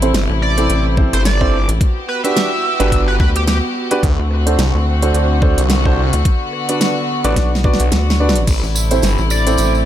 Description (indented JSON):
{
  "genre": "glitch hop",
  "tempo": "108 BPM",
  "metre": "4/4",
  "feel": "swing 57% on 16ths",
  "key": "A dorian",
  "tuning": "A4 = 440 Hz",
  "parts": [
    { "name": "rich studio string section", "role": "sustained chords", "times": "0.0-9.9 s", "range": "C3 to G4", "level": "-22 LUFS", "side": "left 2 dB", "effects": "sidechain pumping" },
    { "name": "warm grand piano", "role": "stabs", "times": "0.0-9.8 s", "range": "C4 to D5", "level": "-20 LUFS", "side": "right 2 dB", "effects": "sidechain pumping, ping-pong delay" },
    { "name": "rubbery square bass", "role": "bass", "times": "0.0-9.9 s", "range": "A1 to D2", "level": "-16 LUFS", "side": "equal", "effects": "tube saturation" },
    { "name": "pop drum kit", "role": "drums", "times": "0.0-9.7 s", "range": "crash cymbal, hi-hat, rim click, snare drum", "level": "-21 LUFS", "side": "right 1 dB", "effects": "studio ambience" },
    { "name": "phased detuned saw bass", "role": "bass", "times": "0.1-9.2 s", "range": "G1 to D2", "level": "-17 LUFS", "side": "equal", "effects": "phaser" },
    { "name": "sync lead", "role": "melody", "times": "0.4-3.6, 9.3-9.7 s", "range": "G4 to E5", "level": "-21 LUFS", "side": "right 1 dB", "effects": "wide subtle chorus, cassette tape, ping-pong delay" },
    { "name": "electronic kick drum", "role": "drums", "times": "1.0-8.6 s", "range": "none", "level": "-16 LUFS", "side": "equal", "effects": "studio ambience" },
    { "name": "tambourine", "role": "percussion", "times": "8.5-9.8 s", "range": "none", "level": "-26 LUFS", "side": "right 4 dB", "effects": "none" }
  ],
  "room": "digital ambience",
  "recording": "none",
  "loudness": "-13 LUFS",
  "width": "side -11 dB against mid",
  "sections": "0.0-9.9 A section",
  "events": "drum fill 7.4-8.5",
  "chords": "0.0 Am; 1.8 Gmaj7; 4.0 D7; 6.3 Bm; 8.5 Am",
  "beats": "0.14 0.70 1.25 | 1.81 2.36 2.92 3.47 | 4.03 4.58 5.14 5.70 | 6.25 6.81 7.36 7.92 | 8.47 9.03 9.59"
}